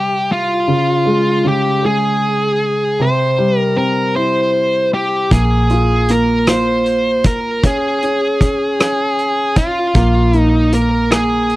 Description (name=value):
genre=six-eight pop ballad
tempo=52 BPM (dotted quarters)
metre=6/8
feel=straight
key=unclear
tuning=A4 = 440 Hz
part: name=high-gain lead guitar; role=melody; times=0.0-11.6 s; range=F4 to C5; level=-16 LUFS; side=equal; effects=distortion
part: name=clear baby grand piano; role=accompaniment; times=0.0-11.6 s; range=C3 to E5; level=-18 LUFS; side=equal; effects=none
part: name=vintage muted fingered electric bass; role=bass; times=5.3-11.6 s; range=Bb1 to Db2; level=-16 LUFS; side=equal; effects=none
part: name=loose indie drum kit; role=drums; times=5.3-11.6 s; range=hi-hat, kick drum, rim click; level=-15 LUFS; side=equal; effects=none
room=studio reverb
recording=dry, close 1970s-style studio recording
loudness=-12 LUFS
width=side -18 dB against mid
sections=0.0-11.6 A section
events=none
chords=0.0 C; 0.7 Db; 3.0 C; 5.3 Bb5; 7.6 Db5; 9.9 Bb5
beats=| 0.68 1.84 | 3.00 4.16 | 5.31 6.47 | 7.63 8.79 | 9.95 11.11